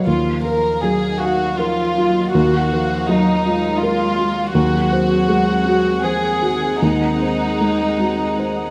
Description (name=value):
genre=neoclassical piano and strings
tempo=80 BPM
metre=3/4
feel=uneven beats, rubato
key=Eb minor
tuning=A4 = 440 Hz
part: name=felt-muted upright piano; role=accompaniment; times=0.0-8.7 s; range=Eb2 to F5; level=-22 LUFS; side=equal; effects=none
part: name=warm studio string section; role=sustained chords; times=0.0-8.7 s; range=Bb3 to Gb5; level=-30 LUFS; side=equal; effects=none
part: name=warm chamber violin section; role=melody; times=0.1-8.7 s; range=Eb4 to Bb4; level=-21 LUFS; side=equal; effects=none
part: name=dark cello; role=second line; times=0.1-8.7 s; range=Eb3 to Ab3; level=-26 LUFS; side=equal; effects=none
room=moderate scoring stage reverb, RT60 1.6 s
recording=none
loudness=-18 LUFS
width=mono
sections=0.1-8.7 A section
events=none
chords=0.1 Ebmadd9; 4.6 Ab7/Eb